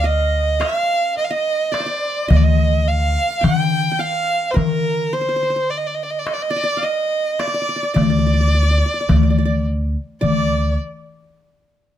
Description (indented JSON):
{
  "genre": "Arabic maqam ensemble",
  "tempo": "106 BPM (eighths)",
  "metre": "10/8",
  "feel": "straight",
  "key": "D maqam kurd",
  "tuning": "A4 = 440 Hz",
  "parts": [
    { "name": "rich violin", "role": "melody", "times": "0.0-10.7 s", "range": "Bb4 to G5", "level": "-20 LUFS", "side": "right 2 dB", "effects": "plate reverb" },
    { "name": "qanun", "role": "second line", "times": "0.0-10.7 s", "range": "Bb4 to G5", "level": "-26 LUFS", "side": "right 1 dB", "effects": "none" },
    { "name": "upright bass", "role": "bass", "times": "0.0-10.8 s", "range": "D2 to D3", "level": "-17 LUFS", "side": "equal", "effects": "none" },
    { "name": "darbuka", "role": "percussion", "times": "0.6-10.7 s", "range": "none", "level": "-21 LUFS", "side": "left 4 dB", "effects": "none" }
  ],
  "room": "light reverb",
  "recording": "close, detailed microphones",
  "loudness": "-16 LUFS",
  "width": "side -11 dB against mid",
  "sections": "0.0-10.2 A section; 10.2-12.0 B section",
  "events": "none",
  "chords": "none",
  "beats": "0.03 0.60 1.16 1.73 2.29 2.86 3.43 3.99 | 4.56 5.12 5.69 6.26 6.82 7.39 7.96 8.52 9.09 9.65 | 10.22"
}